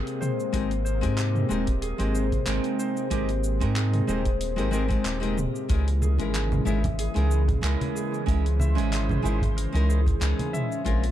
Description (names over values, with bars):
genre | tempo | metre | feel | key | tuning
sunset chillout | 93 BPM | 4/4 | swing 54% on 16ths | unclear | A4 = 444 Hz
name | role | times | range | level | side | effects
lush unison pad | sustained chords | 0.0-11.1 s | C3 to G5 | -32 LUFS | left 1 dB | chorus
concert harp | arpeggios | 0.0-11.1 s | F4 to Fb5 | -34 LUFS | left 1 dB | digital delay
deep house drum kit | drums | 0.1-11.1 s | cabasa, handclaps, hi-hat, toms | -33 LUFS | equal | none
nylon-string guitar | accompaniment | 0.5-11.0 s | Ab3 to G5 | -30 LUFS | moving between left 7 dB and right 9 dB | auto-pan, digital delay
round analog bass | bass | 0.5-11.1 s | Eb1 to Ab2 | -25 LUFS | equal | none
electronic kick drum | drums | 0.5-11.0 s | none | -28 LUFS | equal | none
congas | percussion | 6.0-10.5 s | none | -32 LUFS | right 2 dB | none
room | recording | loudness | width
light reverb, digital ambience | dark, warm production | -23 LUFS | side -12 dB against mid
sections
0.0-11.1 A section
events
none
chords
0.0 Abmaj9; 5.7 Dbm6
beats
| 0.54 1.18 1.83 2.47 | 3.12 3.76 4.41 5.05 | 5.70 6.34 6.99 7.63 | 8.28 8.93 9.57 10.21 | 10.86